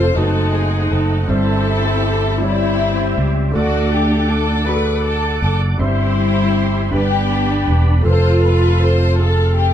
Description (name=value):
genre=slow gospel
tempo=53 BPM (dotted quarters)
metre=6/8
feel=straight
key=C major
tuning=A4 = 441 Hz
part: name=warm studio string section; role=melody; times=0.0-9.7 s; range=G3 to C5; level=-18 LUFS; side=left 2 dB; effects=none
part: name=warm concert grand piano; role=accompaniment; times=0.0-9.7 s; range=G2 to F#5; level=-24 LUFS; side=right 1 dB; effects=none
part: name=tonewheel organ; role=sustained chords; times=0.0-9.7 s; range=A3 to D6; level=-26 LUFS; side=right 2 dB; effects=fast rotary speaker, chorus vibrato
part: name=fingered electric bass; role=bass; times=0.0-9.7 s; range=E1 to D2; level=-16 LUFS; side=equal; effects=none
room=wet studio reverb, RT60 0.6 s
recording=band playing live in one room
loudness=-14 LUFS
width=side -10 dB against mid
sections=0.0-9.7 A section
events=none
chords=0.2 F#dim7; 1.3 C/G; 3.5 D; 5.8 C/G; 6.9 G; 8.0 F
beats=0.16 | 1.28 2.41 | 3.54 4.66 | 5.79 6.92 | 8.04 9.17